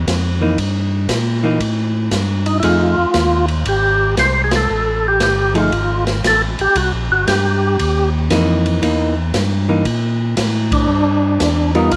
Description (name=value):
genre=soul jazz organ trio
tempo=116 BPM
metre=4/4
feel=swing 67% on 8ths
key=unclear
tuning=A4 = 440 Hz
part: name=tonewheel organ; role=bass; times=0.0-12.0 s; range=G1 to Bb2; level=-20 LUFS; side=equal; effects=overdrive, chorus vibrato, slow rotary speaker
part: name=open jazz drum kit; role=drums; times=0.1-12.0 s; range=hi-hat, kick drum, ride cymbal, snare drum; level=-24 LUFS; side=equal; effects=none
part: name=hollow-body jazz guitar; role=accompaniment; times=0.4-11.9 s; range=E3 to A#4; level=-22 LUFS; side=equal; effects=none
part: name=percussive tonewheel organ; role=melody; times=2.5-12.0 s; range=D4 to C5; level=-18 LUFS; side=equal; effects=slow rotary speaker, overdrive, chorus vibrato
room=light reverb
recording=none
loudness=-16 LUFS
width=mono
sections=0.0-12.0 A section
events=band accent 4.4, 10.6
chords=0.0 C7(no3) (rootless); 2.6 F7#9; 6.8 C7#9 (rootless); 10.9 G7#9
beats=0.06 | 0.58 1.09 1.60 2.12 | 2.63 3.15 3.66 4.18 | 4.69 5.21 5.72 6.24 | 6.76 7.27 7.79 8.30 | 8.82 9.34 9.86 10.37 | 10.89 11.40 11.92